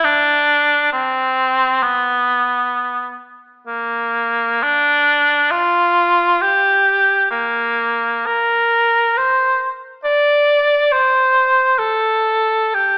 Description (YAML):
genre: classical, free, expressive piece for unaccompanied cor anglais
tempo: free time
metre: none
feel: none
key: unclear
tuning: A4 = 440 Hz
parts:
  - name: warm cor anglais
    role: solo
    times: 0.0-13.0 s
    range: Bb3 to D5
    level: -13 LUFS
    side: equal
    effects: none
room: wet recital hall reverb, RT60 1.7 s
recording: AM radio sound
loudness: -13 LUFS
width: side -33 dB against mid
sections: 0.0-13.0 A section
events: none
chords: none